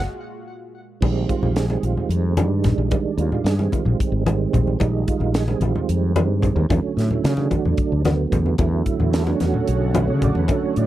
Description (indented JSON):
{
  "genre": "electric jazz fusion",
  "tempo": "222 BPM (eighths)",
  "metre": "7/8",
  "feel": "straight",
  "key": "unclear",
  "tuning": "A4 = 441 Hz",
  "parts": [
    { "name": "tonewheel organ", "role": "accompaniment", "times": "0.0-10.9 s", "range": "D3 to D5", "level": "-23 LUFS", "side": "right 7 dB", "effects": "slow rotary speaker, overdrive, chorus vibrato" },
    { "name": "analog string pad", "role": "sustained chords", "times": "0.0-1.0, 8.6-10.9 s", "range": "A#2 to Gb4", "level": "-31 LUFS", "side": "left 1 dB", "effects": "ensemble chorus" },
    { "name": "fretless electric bass", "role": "bass", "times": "0.0-10.9 s", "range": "Ab1 to C#3", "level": "-21 LUFS", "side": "left 1 dB", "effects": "none" },
    { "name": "crisp fusion drum kit", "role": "drums", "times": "1.0-10.9 s", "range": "crash cymbal, hi-hat, kick drum, snare drum", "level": "-25 LUFS", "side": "left 1 dB", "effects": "none" },
    { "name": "congas", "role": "percussion", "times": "1.0-10.6 s", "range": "none", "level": "-24 LUFS", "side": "left 2 dB", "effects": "none" }
  ],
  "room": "little or no reverb",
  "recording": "dry, close 1970s-style studio recording",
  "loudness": "-18 LUFS",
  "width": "side -14 dB against mid",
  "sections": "0.0-1.0 A section; 1.0-10.9 B section",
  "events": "band accent 0.0-1.0; drum fill 0.2-1.0; tonewheel organ fill 0.2-1.0",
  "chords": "0.0 Gbmaj9; 1.0 Bb13sus4; 6.7 E13sus4",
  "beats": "0.21 0.48 0.75 | 1.02 1.29 1.56 1.83 2.10 2.38 2.65 | 2.92 3.19 3.46 3.73 4.00 4.27 4.54 | 4.81 5.08 5.35 5.62 5.89 6.16 6.43 | 6.70 6.97 7.24 7.51 7.78 8.05 8.32 | 8.60 8.87 9.13 9.41 9.68 9.95 10.22 | 10.49 10.76"
}